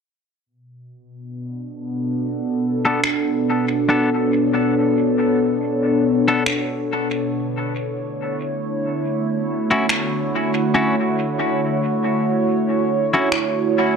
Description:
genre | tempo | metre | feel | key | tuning
ambient dub | 70 BPM | 4/4 | swing 58% on 16ths | B minor | A4 = 440 Hz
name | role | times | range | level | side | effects
warbly tape-like pad | sustained chords | 1.3-14.0 s | B2 to C#5 | -19 LUFS | equal | chorus, built-in reverb, phaser
semi-hollow electric guitar | stabs | 2.9-13.3 s | B3 to A4 | -22 LUFS | left 2 dB | low-pass filter, dub echo
electronic finger snaps | drums | 3.0-13.5 s | none | -25 LUFS | equal | dub echo
room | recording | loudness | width
light reverb | echo-heavy mix | -18 LUFS | side -6 dB against mid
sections
0.5-14.0 A section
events
none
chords
0.5 Bm7; 7.3 Dmaj9

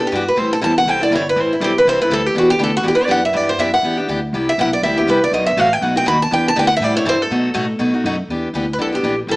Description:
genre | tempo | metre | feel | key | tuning
acoustic string swing (jazz manouche) | 242 BPM | 4/4 | swing 55% on 8ths | E minor | A4 = 440 Hz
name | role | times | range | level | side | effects
picked steel-string acoustic guitar | melody | 0.0-9.4 s | E4 to B5 | -16 LUFS | right 1 dB | none
picked steel-string acoustic guitar | accompaniment | 0.0-9.4 s | B2 to A4 | -20 LUFS | left 1 dB | none
upright bass | bass | 0.0-9.4 s | G1 to B2 | -23 LUFS | equal | none
room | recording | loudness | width
moderate studio reverb, RT60 0.7 s | small speaker sound | -14 LUFS | side -22 dB against mid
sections
0.0-8.3 A section; 8.3-9.4 B section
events
steel-string acoustic guitar solo 0.0-8.3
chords
0.4 Am7; 2.4 Em7; 4.3 Cmaj7; 5.3 B7; 6.3 Em7; 6.8 Am7; 7.3 B7; 8.3 Em7

